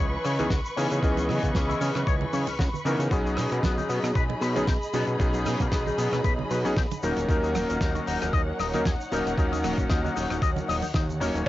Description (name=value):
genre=nu-disco, nu disco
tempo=115 BPM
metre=4/4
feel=swing 55% on 16ths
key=unclear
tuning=A4 = 440 Hz
part: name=clear electric grand piano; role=accompaniment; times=0.0-11.5 s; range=E3 to D#5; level=-28 LUFS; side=left 1 dB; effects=sidechain pumping, cassette tape, analog delay
part: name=dark studio string section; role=sustained chords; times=0.0-11.4 s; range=D#4 to C#6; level=-33 LUFS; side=equal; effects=sidechain pumping, cassette tape
part: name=electric guitar with an envelope filter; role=riff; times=0.0-11.4 s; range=A#3 to D#5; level=-34 LUFS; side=left 8 dB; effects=analog chorus, cassette tape, analog delay
part: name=fat analog bass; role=bass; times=0.0-11.5 s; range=D#1 to C#3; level=-30 LUFS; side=equal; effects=none
part: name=damped 70s drum kit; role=drums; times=0.2-11.4 s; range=hi-hat, rim click, shaker, snare drum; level=-35 LUFS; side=equal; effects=small room ambience, cassette tape
part: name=congas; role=percussion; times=0.3-11.3 s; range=none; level=-37 LUFS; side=right 9 dB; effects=none
part: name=electronic kick drum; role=drums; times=0.5-11.5 s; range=none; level=-26 LUFS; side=equal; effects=small room ambience, cassette tape
room=light reverb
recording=home recording on cassette, nothing above 7.7 kHz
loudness=-23 LUFS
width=side -15 dB against mid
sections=0.0-11.5 A section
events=none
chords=0.0 C#m7; 3.1 B6; 7.0 D#m7